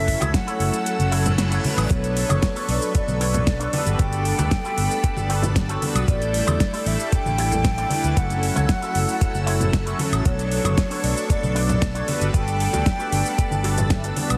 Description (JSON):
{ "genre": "nu-disco, nu disco", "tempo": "115 BPM", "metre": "4/4", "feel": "straight", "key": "B minor", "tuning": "A4 = 440 Hz", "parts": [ { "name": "mellow hollow silver concert flute", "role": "melody", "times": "0.0-14.2 s", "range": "C#5 to A5", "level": "-30 LUFS", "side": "equal", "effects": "dub echo" }, { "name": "warm analog pad", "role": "accompaniment", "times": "0.0-14.4 s", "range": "F#3 to D5", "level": "-30 LUFS", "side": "equal", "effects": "chorus, tremolo, vintage 12-bit sampler grit, sidechain pumping" }, { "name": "string machine, full ensemble", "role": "sustained chords", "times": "0.0-14.4 s", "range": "A4 to E6", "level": "-36 LUFS", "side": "equal", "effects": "ensemble chorus, sidechain pumping" }, { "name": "fingered electric bass", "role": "bass", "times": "0.0-14.4 s", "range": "F#1 to E2", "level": "-26 LUFS", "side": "equal", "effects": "none" }, { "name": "electronic kick drum", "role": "drums", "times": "0.1-14.0 s", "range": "none", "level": "-24 LUFS", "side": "equal", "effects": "none" }, { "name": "pop drum kit", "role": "drums", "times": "0.1-14.4 s", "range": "cabasa, hi-hat, snare drum, woodblock", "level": "-30 LUFS", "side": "equal", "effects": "overdrive" }, { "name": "electric guitar with an envelope filter", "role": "riff", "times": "0.2-14.4 s", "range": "D4 to F#5", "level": "-34 LUFS", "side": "equal", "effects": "analog chorus, vintage 12-bit sampler grit" }, { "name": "congas", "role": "percussion", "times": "0.2-14.3 s", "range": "none", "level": "-30 LUFS", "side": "equal", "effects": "none" }, { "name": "reverse cymbal", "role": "sound effects", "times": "1.1-1.9 s", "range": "none", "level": "-37 LUFS", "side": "equal", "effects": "none" } ], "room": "light reverb, digital ambience", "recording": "heavily compressed radio sound, multiband compression", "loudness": "-22 LUFS", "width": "mono", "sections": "0.0-14.4 A section", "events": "kick drops out 0.9-1.9; reverse cymbal 1.1-1.9; clean electric guitar fill 9.5-10.3, 13.4-14.4", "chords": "0.0 F#m7; 1.9 Bm9; 3.7 Gmaj9; 6.1 A7sus4; 8.2 F#m7; 10.3 Bm9; 12.1 Gmaj9" }